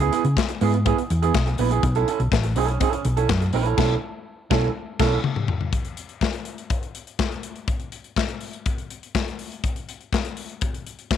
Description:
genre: disco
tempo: 123 BPM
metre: 4/4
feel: straight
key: unclear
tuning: A4 = 442 Hz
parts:
  - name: electric guitar at the edge of break-up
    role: accompaniment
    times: 0.0-5.2 s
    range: B3 to B4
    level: -24 LUFS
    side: right 10 dB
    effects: none
  - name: hollow-body short-scale fingered electric bass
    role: bass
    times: 0.0-5.2 s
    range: A1 to C#3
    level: -22 LUFS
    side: equal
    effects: none
  - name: modern studio drum kit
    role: drums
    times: 0.0-11.2 s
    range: crash cymbal, handclaps, hi-hat, kick drum, snare drum, toms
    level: -25 LUFS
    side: left 4 dB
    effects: none
room: light reverb, small room ambience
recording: 1960s-style stereo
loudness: -21 LUFS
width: side -9 dB against mid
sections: 0.0-5.7 A section; 5.7-11.2 B section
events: band accent 3.8-5.7; drum fill 4.8-5.7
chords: 0.0 C#m7 (rootless); 1.8 B9sus4; 5.7 N.C.

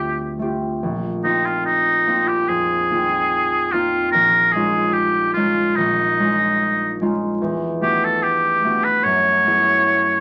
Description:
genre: classical, impressionist duo for oboe and harp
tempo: 73 BPM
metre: 4/4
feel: rubato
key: unclear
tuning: A4 = 440 Hz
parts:
  - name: clear oboe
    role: melody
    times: 0.0-10.2 s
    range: Eb4 to C#5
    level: -19 LUFS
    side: equal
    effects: none
  - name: concert harp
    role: accompaniment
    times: 0.0-10.2 s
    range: Bb1 to G#4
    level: -24 LUFS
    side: equal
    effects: none
room: moderate studio reverb, RT60 0.6 s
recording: vinyl crackle, nothing above 7.6 kHz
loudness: -18 LUFS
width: mono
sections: 0.0-10.2 A section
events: none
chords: 0.0 Fadd9/D; 0.8 Bb9sus4; 4.1 C#add9/Bb; 7.4 E9sus4; 9.0 F#m11

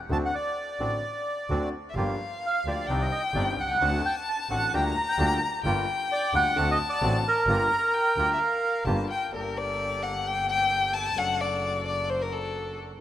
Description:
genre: tango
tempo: 130 BPM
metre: 4/4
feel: rubato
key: G minor, G harmonic minor from 9.3 s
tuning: A4 = 439 Hz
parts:
  - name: bandoneon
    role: melody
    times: 0.1-8.8 s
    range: Bb4 to Bb5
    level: -26 LUFS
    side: right 2 dB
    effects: none
  - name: clear concert grand piano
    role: accompaniment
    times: 0.1-13.0 s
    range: G1 to A4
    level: -35 LUFS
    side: left 2 dB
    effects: none
  - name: bandoneon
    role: stabs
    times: 0.1-12.9 s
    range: Bb3 to A4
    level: -38 LUFS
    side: right 3 dB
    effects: none
  - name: clear double bass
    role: bass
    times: 0.1-12.9 s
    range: F#1 to D2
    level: -31 LUFS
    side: right 1 dB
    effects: none
  - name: warm violin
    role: second line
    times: 1.9-12.8 s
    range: A4 to Bb5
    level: -28 LUFS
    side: left 4 dB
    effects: none
room: moderate lush hall reverb, RT60 2.4 s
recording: rough home demo mix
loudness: -24 LUFS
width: side -12 dB against mid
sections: 0.0-9.3 A section; 9.3-13.0 B section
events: violin solo 9.3-13.0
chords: 0.1 D7; 2.0 Gm7; 2.9 Cmadd9; 3.8 D7; 4.7 Bb6/D; 5.6 Gm7; 6.6 D7; 7.5 Gm7; 9.3 Gmadd9; 11.2 D/F#

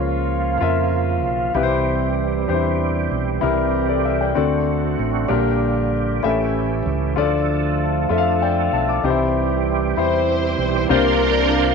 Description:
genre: slow gospel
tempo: 64 BPM (dotted quarters)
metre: 6/8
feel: straight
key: unclear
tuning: A4 = 441 Hz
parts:
  - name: clear concert grand piano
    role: accompaniment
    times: 0.0-11.7 s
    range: A2 to D6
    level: -20 LUFS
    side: left 8 dB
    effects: none
  - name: bright tonewheel organ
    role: sustained chords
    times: 0.0-11.7 s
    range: Db3 to C6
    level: -23 LUFS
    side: right 13 dB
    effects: fast rotary speaker, chorus vibrato
  - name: fingered electric bass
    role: bass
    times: 0.0-11.7 s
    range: A1 to F2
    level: -23 LUFS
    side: right 2 dB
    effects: none
  - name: warm studio string section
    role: melody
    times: 10.0-11.7 s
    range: D4 to C5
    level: -20 LUFS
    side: right 2 dB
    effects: none
room: wet spring reverb, RT60 1.7 s, small room ambience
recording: 1960s-style stereo with parts hard left and right, nothing above 8.0 kHz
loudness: -17 LUFS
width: side -5 dB against mid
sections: 0.0-10.9 A section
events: none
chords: 0.0 Bbm/Db; 1.6 C; 4.4 D7; 5.3 Gm/Bb; 6.2 A7; 7.2 Dm; 9.0 C; 10.9 C9sus4

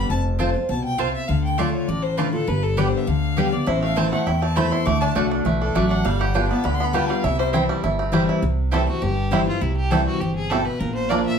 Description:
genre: bluegrass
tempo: 202 BPM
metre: 4/4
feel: straight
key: C major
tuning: A4 = 438 Hz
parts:
  - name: clear fiddle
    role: second line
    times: 0.0-7.5 s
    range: A4 to D6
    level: -28 LUFS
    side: left 3 dB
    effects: none
  - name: picked steel-string acoustic guitar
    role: accompaniment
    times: 0.0-11.4 s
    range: E2 to G4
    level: -23 LUFS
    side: left 2 dB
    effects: none
  - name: upright bass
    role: bass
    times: 0.0-11.2 s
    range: F1 to E2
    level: -24 LUFS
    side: equal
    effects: none
  - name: mandolin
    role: stabs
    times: 0.4-11.2 s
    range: A3 to Bb5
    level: -27 LUFS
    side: right 4 dB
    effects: none
  - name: bluegrass banjo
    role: arpeggios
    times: 3.7-11.2 s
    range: D3 to G4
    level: -25 LUFS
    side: right 3 dB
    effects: none
  - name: clear fiddle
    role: melody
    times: 8.7-11.4 s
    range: E4 to E5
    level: -27 LUFS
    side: right 1 dB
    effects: tape echo
room: wet studio reverb, RT60 0.6 s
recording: heard from further back in the room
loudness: -19 LUFS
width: side -7 dB against mid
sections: 0.0-8.4 A section; 8.4-11.4 A section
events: fiddle solo 0.0-8.4, 8.4-11.4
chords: 0.1 F; 1.3 Dm; 2.5 G; 3.7 Am; 4.9 D; 6.0 G7; 7.2 C; 10.8 Bb

